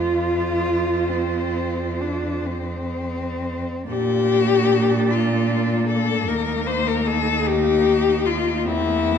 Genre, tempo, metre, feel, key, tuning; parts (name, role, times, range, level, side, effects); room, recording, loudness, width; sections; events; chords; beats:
classical, lyrical piece for cello ensemble; 41-51 BPM (dotted quarters); 12/8; rubato; Bb major; A4 = 435 Hz
rich cello; melody; 0.0-9.2 s; E4 to C5; -22 LUFS; left 7 dB
clear cello; second line; 0.0-9.2 s; C4 to F4; -28 LUFS; right 8 dB
rich cello; accompaniment; 0.0-9.2 s; Bb3 to F4; -27 LUFS; left 4 dB
clear cello; bass; 0.0-9.2 s; Eb2 to Bb2; -24 LUFS; right 3 dB
moderate recital hall reverb, RT60 1.6 s; dark, warm production; -19 LUFS; side -7 dB against mid
0.0-3.9 A section; 3.9-9.2 B section
0.0 F5; 3.9 Bb; 6.3 Eb; 8.7 C7/E
1.08 2.47 | 3.87 5.09 6.28 7.47 | 8.67